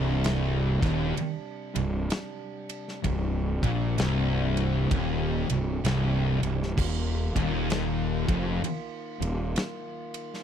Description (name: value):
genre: stoner and doom metal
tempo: 64 BPM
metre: 4/4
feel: swing 63% on 8ths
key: C minor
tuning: A4 = 440 Hz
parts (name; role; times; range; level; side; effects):
- percussive tonewheel organ; sustained chords; 0.0-10.4 s; C3 to F4; -40 LUFS; right 2 dB; overdrive, wide subtle chorus
- fuzz guitar; riff; 0.0-9.5 s; C2 to Bb2; -33 LUFS; left 1 dB; distortion
- thick fuzz guitar; riff; 0.0-9.5 s; C2 to Bb2; -32 LUFS; left 9 dB; distortion
- thick fuzz guitar; riff; 0.0-9.5 s; C2 to Bb2; -31 LUFS; right 7 dB; distortion
- fuzz fingered electric bass; bass; 0.0-9.5 s; C1 to Bb1; -29 LUFS; equal; overdrive, tube saturation
- big rock drum kit; drums; 0.2-10.4 s; crash cymbal, kick drum, ride cymbal, snare drum; -33 LUFS; equal; none
room: little or no reverb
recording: dry, close 1970s-style studio recording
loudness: -25 LUFS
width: side -9 dB against mid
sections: 0.0-10.4 A section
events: none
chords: 0.0 Cm; 6.8 Eb5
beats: 0.24 1.18 2.11 | 3.04 3.98 4.91 5.84 | 6.77 7.70 8.63 9.55